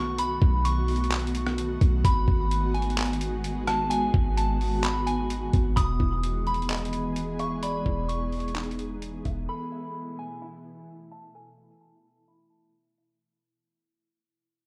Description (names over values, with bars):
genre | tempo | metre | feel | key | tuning
hip hop, atmospheric cloud-rap | 129 BPM | 4/4 | half-time | unclear | A4 = 440 Hz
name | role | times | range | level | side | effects
soft synth bell | melody | 0.0-12.7 s | G#5 to D#6 | -34 LUFS | equal | chorus, low-pass filter, tape echo
ethereal airy pad | sustained chords | 0.0-13.2 s | B2 to G#4 | -34 LUFS | equal | ensemble chorus, built-in reverb, low-pass filter
warm 808-style bass | bass | 0.0-9.5 s | E1 to B1 | -30 LUFS | equal | none
trip hop sampler-style drum kit | drums | 0.2-9.4 s | handclaps, hi-hat, kick drum, rim click | -31 LUFS | equal | none
mellow electric guitar | arpeggios | 5.8-13.2 s | D#4 to B5 | -41 LUFS | equal | low-pass filter, tape echo
room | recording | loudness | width
moderate studio reverb, RT60 0.6 s | none | -27 LUFS | mono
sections
0.0-5.8 A section; 5.8-13.2 B section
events
fade-out 5.8-13.2; filter sweep 5.8-13.2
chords
0.0 B7; 2.0 G#m7; 5.8 Emaj7; 9.5 Asus2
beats
| 0.18 0.65 1.12 1.58 | 2.05 2.51 2.98 3.44 | 3.91 4.37 4.84 5.30 | 5.77 6.23 6.70 7.16 | 7.63 8.09 8.56 9.02 | 9.49 9.95 10.42 10.88 | 11.35 11.81 12.28 12.74